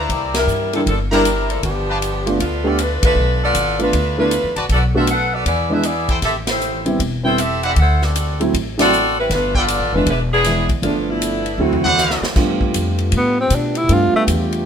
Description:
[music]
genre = jazz, big band swing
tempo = 156 BPM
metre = 4/4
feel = swing 64% on 8ths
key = G mixolydian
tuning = A4 = 440 Hz
[part]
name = clear saxophone section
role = melody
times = 0.0-12.2 s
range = E3 to G5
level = -19 LUFS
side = left 1 dB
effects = none
[part]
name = bright trumpet section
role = stabs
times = 0.0-2.0, 4.6-12.3 s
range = E4 to Bb5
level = -21 LUFS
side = equal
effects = none
[part]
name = upright bass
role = bass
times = 0.0-14.6 s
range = E1 to B2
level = -21 LUFS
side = equal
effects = none
[part]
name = swinging big-band drum kit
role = drums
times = 0.1-14.6 s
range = crash cymbal, hi-hat, kick drum, ride cymbal, snare drum, toms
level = -24 LUFS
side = equal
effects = none
[part]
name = warm grand piano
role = accompaniment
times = 0.7-14.7 s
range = E3 to G4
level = -20 LUFS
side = right 2 dB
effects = none
[part]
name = bright trombone section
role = sustained chords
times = 12.4-14.7 s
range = A3 to G4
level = -27 LUFS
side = right 1 dB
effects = none
[part]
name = breathy tenor saxophone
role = melody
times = 13.2-14.2 s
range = A3 to F4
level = -17 LUFS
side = right 1 dB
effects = none
[sound]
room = light reverb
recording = minimal, uncompressed stereo recording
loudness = -15 LUFS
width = side -8 dB against mid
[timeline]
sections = 0.0-12.4 A section; 12.4-14.7 B section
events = band accent 0.3, 3.0, 6.4, 8.7; drum fill 11.6-12.4; tenor saxophone solo 12.4-14.7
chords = 0.1 C9; 1.6 G9; 4.7 Bm7; 5.5 E7; 6.2 Am7; 7.8 D9; 9.3 G9; 10.1 E7; 10.8 G9; 11.6 D9; 12.4 G9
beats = | 0.09 0.48 0.86 1.24 | 1.63 2.01 2.39 2.78 | 3.16 3.54 3.93 4.31 | 4.70 5.08 5.46 5.85 | 6.23 6.61 7.00 7.38 | 7.76 8.15 8.53 8.91 | 9.30 9.68 10.06 10.45 | 10.83 11.21 11.60 11.98 | 12.36 12.75 13.13 13.52 | 13.90 14.28

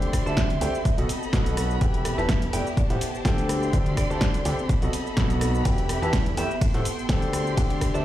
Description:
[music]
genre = piano house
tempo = 125 BPM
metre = 4/4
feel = swing 54% on 16ths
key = E minor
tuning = A4 = 437 Hz
[part]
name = rich chamber violin section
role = sustained chords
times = 0.0-8.0 s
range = G4 to C6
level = -35 LUFS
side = left 1 dB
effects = sidechain pumping
[part]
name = warm concert grand piano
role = riff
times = 0.0-8.0 s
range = E3 to A5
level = -29 LUFS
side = left 1 dB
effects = sidechain pumping, ping-pong delay
[part]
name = fat analog bass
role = bass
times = 0.0-8.0 s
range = E1 to A2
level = -27 LUFS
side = equal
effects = sidechain pumping
[part]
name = punchy analog drum machine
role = drums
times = 0.0-8.0 s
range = hi-hat, ride cymbal, rim click, shaker, snare drum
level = -32 LUFS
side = equal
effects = overdrive
[part]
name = granular cloud pad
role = texture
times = 0.0-8.0 s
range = B3 to G5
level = -35 LUFS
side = equal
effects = built-in reverb, sidechain pumping
[part]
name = electronic kick drum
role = drums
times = 0.1-7.9 s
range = none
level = -25 LUFS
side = equal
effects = overdrive
[part]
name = vibraphone with medium hard mallets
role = melody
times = 0.3-8.0 s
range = B4 to E5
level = -33 LUFS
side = right 3 dB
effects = ping-pong delay
[sound]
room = light reverb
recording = played on a big sound system in a bare room, large studio reverb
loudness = -22 LUFS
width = side -13 dB against mid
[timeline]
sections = 0.0-8.0 A section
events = none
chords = 0.0 D7sus4; 0.9 B7; 1.8 Em; 2.8 Am7; 3.5 D7sus4; 4.7 B7; 5.7 Em; 6.6 Am7; 7.3 D7sus4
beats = 0.37 0.85 1.33 | 1.81 2.29 2.77 3.25 | 3.73 4.21 4.69 5.17 | 5.65 6.13 6.61 7.09 | 7.57

